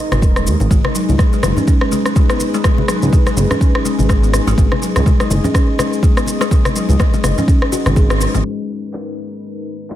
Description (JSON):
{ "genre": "afro house", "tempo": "124 BPM", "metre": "4/4", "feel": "swing 58% on 16ths", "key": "G# minor", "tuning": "A4 = 440 Hz", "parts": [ { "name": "warm analog pad", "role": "sustained chords", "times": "0.0-10.0 s", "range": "G#3 to D#5", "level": "-23 LUFS", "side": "right 1 dB", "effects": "chorus, sidechain pumping" }, { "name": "smooth gliding synth bass", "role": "bass", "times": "0.1-8.4 s", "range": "D#1 to D#2", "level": "-16 LUFS", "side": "equal", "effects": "tube saturation, sidechain pumping" }, { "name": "electronic rim click, shaker and handclaps", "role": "drums", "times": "0.1-10.0 s", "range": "none", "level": "-21 LUFS", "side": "left 1 dB", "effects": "low-pass filter on perc, studio reverb, low-pass filter on snare" }, { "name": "congas", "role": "percussion", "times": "0.1-8.4 s", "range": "none", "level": "-23 LUFS", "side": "left 2 dB", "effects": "none" }, { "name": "electronic kick drum", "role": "drums", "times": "0.2-8.1 s", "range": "none", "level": "-14 LUFS", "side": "equal", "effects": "studio reverb" }, { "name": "buzzing kalimba", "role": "arpeggios", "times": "0.7-8.4 s", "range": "F#3 to G#4", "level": "-21 LUFS", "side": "left 3 dB", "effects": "sidechain pumping, dub echo" } ], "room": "light reverb", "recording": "low-pass filter", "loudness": "-12 LUFS", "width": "side -12 dB against mid", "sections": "0.0-8.4 A section; 8.4-10.0 B section", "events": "band accent 8.1; filter sweep 8.4-10.0", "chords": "0.0 G#m" }